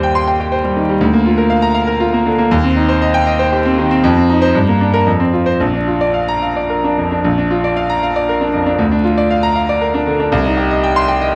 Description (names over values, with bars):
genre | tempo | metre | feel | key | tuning
classical, virtuoso piano study | 109-123 BPM | 3/4 | rubato | Bb major | A4 = 440 Hz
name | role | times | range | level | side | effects
bright grand piano | solo | 0.0-11.3 s | Bb1 to C6 | -14 LUFS | equal | none
room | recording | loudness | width
light reverb | vinyl crackle | -14 LUFS | mono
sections
0.0-7.2 A section; 7.2-11.3 A section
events
none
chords
0.0 Cm/Eb; 1.0 Bb/D; 2.5 Cm/Eb; 4.0 F5; 4.5 Gm; 5.1 F5; 5.6 Bb; 8.8 Bb/D; 10.3 Cm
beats
0.03 0.52 | 1.01 1.50 2.00 | 2.50 3.01 3.52 | 4.04 4.55 5.07 | 5.60 6.15 6.70 | 7.25 7.77 8.29 | 8.80 9.31 9.82 | 10.32 10.83 11.33